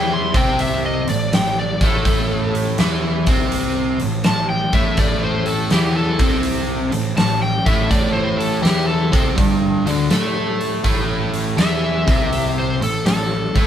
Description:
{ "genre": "blues rock power trio and southern rock", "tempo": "82 BPM", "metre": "4/4", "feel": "swing 67% on 8ths", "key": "A minor", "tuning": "A4 = 439 Hz", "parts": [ { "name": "overdriven slide guitar", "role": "melody", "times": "0.0-13.7 s", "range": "G4 to C6", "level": "-22 LUFS", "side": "left 1 dB", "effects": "none" }, { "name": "overdriven semi-hollow guitar", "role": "riff", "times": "0.0-13.7 s", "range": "G2 to A4", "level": "-20 LUFS", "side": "equal", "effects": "spring reverb" }, { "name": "fuzz picked electric bass", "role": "bass", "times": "0.0-13.7 s", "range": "G1 to A2", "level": "-25 LUFS", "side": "equal", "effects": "overdrive" }, { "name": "huge arena drum kit", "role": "drums", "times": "0.3-13.7 s", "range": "hi-hat, kick drum, snare drum", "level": "-20 LUFS", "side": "equal", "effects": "none" } ], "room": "moderate studio reverb, RT60 0.6 s", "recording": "band playing live in one room", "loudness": "-16 LUFS", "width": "side -10 dB against mid", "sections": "0.0-13.7 A section", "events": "none", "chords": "0.0 Am", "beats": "0.59 1.32 | 2.05 2.78 3.51 4.24 | 4.98 5.71 6.44 7.17 | 7.91 8.64 9.38 10.11 | 10.85 11.59 12.32 13.06" }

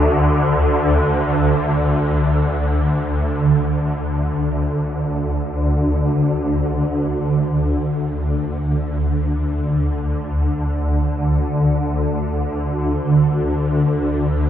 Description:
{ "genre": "dark ambient drone", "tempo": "free time", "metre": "none", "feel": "none", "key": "unclear", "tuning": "A4 = 440 Hz", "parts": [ { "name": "swarming drone", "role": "drone", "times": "0.0-14.5 s", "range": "D2 to D3", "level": "-16 LUFS", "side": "equal", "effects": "built-in reverb, ensemble chorus" }, { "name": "bronze singing bowl", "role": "texture", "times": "0.0-4.4 s", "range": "A4", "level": "-32 LUFS", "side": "left 1 dB", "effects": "none" } ], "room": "wet huge ambient reverb, RT60 8.1 s", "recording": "dreamy mix soaked in reverb", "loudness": "-16 LUFS", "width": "side -10 dB against mid", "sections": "0.0-4.4 A section; 4.4-14.5 B section", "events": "none", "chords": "0.0 D5", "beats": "free time" }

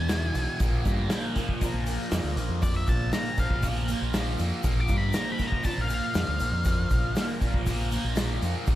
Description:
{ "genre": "psychedelic rock", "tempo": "119 BPM", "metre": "4/4", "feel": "straight", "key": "unclear", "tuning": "A4 = 438 Hz", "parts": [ { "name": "octave-fuzz lead guitar", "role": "melody", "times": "0.0-7.3 s", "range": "D5 to D6", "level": "-34 LUFS", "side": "left 2 dB", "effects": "distortion, dub echo" }, { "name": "thick fuzz guitar", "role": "riff", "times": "0.0-8.8 s", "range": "E2 to A#3", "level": "-31 LUFS", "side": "right 1 dB", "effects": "distortion, phaser, dub echo" }, { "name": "growling fingered electric bass", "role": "bass", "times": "0.0-8.8 s", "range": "A#1 to G2", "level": "-28 LUFS", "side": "equal", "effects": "overdrive" }, { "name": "vintage drum kit", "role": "drums", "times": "0.1-8.8 s", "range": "hi-hat, kick drum, snare drum", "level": "-28 LUFS", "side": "equal", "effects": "none" }, { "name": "egg shaker", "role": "percussion", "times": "0.1-8.8 s", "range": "none", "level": "-45 LUFS", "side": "left 14 dB", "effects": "none" } ], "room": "little or no reverb", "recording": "echo-heavy mix", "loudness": "-24 LUFS", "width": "side -14 dB against mid", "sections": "0.0-8.8 A section", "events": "lead electric guitar solo 0.0-8.8", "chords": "0.0 E; 0.6 A#5", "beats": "0.10 | 0.60 1.11 1.61 2.12 | 2.62 3.13 3.63 4.14 | 4.64 5.15 5.65 6.16 | 6.66 7.17 7.67 8.17 | 8.68" }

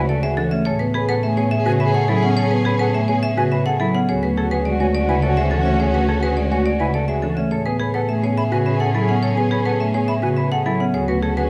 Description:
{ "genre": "classical, minimalist pattern music", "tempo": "105 BPM", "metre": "3/4", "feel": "straight", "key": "A major", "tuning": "A4 = 441 Hz", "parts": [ { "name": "marimba with hard mallets", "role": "melody", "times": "0.0-11.5 s", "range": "G#4 to F#5", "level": "-27 LUFS", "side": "equal", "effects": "none" }, { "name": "warm soprano saxophone", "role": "second line", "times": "0.0-11.5 s", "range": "F#4 to G#4", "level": "-29 LUFS", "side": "equal", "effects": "none" }, { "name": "marimba with soft mallets", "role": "accompaniment", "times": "0.0-11.3 s", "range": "C#3 to B3", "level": "-24 LUFS", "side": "equal", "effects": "none" }, { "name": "warm studio string section", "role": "sustained chords", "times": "0.0-11.5 s", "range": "C#4 to G#4", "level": "-31 LUFS", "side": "equal", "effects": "none" }, { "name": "mellow electric guitar", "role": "arpeggios", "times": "0.0-11.5 s", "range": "C#4 to B4", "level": "-28 LUFS", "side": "equal", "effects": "none" }, { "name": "rich double bass", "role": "bass", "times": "0.0-11.5 s", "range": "D2 to A2", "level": "-26 LUFS", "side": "equal", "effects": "none" }, { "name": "silver concert flute", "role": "arpeggios", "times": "1.1-11.4 s", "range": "F#5 to B5", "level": "-31 LUFS", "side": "equal", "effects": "none" } ], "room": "moderate scoring stage reverb, RT60 1.6 s", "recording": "close, detailed microphones", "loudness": "-19 LUFS", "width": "mono", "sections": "0.0-11.5 A section", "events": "none", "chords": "0.0 Dmaj9#11; 0.7 Amaj9; 4.1 Dmaj9#11; 7.5 Amaj9; 10.9 Dmaj7#11", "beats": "0.09 | 0.66 1.23 1.80 | 2.37 2.94 3.52 | 4.09 4.66 5.23 | 5.80 6.37 6.94 | 7.51 8.09 8.66 | 9.23 9.80 10.37 | 10.94" }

